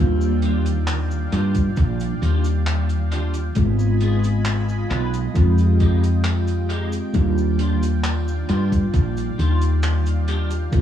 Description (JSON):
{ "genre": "vaporwave", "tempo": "67 BPM", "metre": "4/4", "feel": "straight", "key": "Eb major", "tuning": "A4 = 440 Hz", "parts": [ { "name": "mellow FM electric piano", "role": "accompaniment", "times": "0.0-10.8 s", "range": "Eb3 to Bb4", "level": "-26 LUFS", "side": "right 1 dB", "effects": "tremolo, analog chorus, dub echo" }, { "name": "lush unison pad", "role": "sustained chords", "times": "0.0-10.8 s", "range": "Eb3 to Cb6", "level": "-34 LUFS", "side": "right 1 dB", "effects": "chorus" }, { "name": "woody fretless electric bass", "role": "bass", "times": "0.0-10.8 s", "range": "Ab1 to G2", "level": "-19 LUFS", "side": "equal", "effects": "tube saturation" }, { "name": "damped 70s drum kit", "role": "drums", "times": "0.2-10.8 s", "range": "cabasa, handclaps, hi-hat", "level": "-32 LUFS", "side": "equal", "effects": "studio ambience, dub echo" }, { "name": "clean electric guitar", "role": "riff", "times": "0.4-10.5 s", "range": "G3 to Cb5", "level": "-34 LUFS", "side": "equal", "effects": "ensemble chorus, dub echo" }, { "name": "electronic kick drum", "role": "drums", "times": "1.6-10.8 s", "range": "none", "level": "-20 LUFS", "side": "equal", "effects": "studio ambience" } ], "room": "small room ambience", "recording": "echo-heavy mix, cassette tape", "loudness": "-18 LUFS", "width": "side -10 dB against mid", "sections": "0.0-10.8 A section", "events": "none", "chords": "0.0 Ebmaj9; 3.6 Abm6; 5.4 Fm9; 7.1 Ebmaj9", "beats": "0.88 1.77 2.67 | 3.56 4.46 5.36 6.25 | 7.15 8.04 8.94 9.83 | 10.73" }